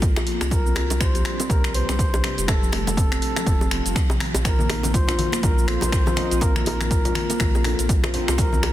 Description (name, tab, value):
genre	afro house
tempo	122 BPM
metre	4/4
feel	swing 58% on 16ths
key	unclear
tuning	A4 = 439 Hz
part	trumpet with bucket mute	melody	0.0-8.7 s	A4 to C5	-30 LUFS	equal	ping-pong delay
part	ethereal airy pad	sustained chords	0.0-8.7 s	C3 to F4	-33 LUFS	equal	ensemble chorus, built-in reverb, sidechain pumping
part	warm sub bass	bass	0.0-8.7 s	F1 to C2	-27 LUFS	equal	sidechain pumping
part	deep house drum kit	drums	0.0-8.7 s	finger snaps, hi-hat, shaker	-27 LUFS	equal	overdrive, soft clipping on snare
part	electronic kick drum	drums	0.0-8.5 s	none	-22 LUFS	equal	overdrive
part	kalimba	arpeggios	0.2-8.7 s	C3 to Cb5	-28 LUFS	left 2 dB	sidechain pumping, ping-pong delay
part	bongos	percussion	0.2-8.7 s	none	-30 LUFS	right 2 dB	none
part	mellow synth brass	stabs	4.4-8.5 s	C4 to Eb5	-32 LUFS	right 4 dB	chorus, cassette tape, sidechain pumping, ping-pong delay
part	congas	percussion	4.5-8.6 s	none	-32 LUFS	left 4 dB	none
room	studio ambience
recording	dense, heavily limited modern master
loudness	-19 LUFS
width	side -13 dB against mid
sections	0.0-8.7 A section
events	none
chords	0.0 Bbsus2; 0.5 C5; 2.5 F; 4.4 Bbsus2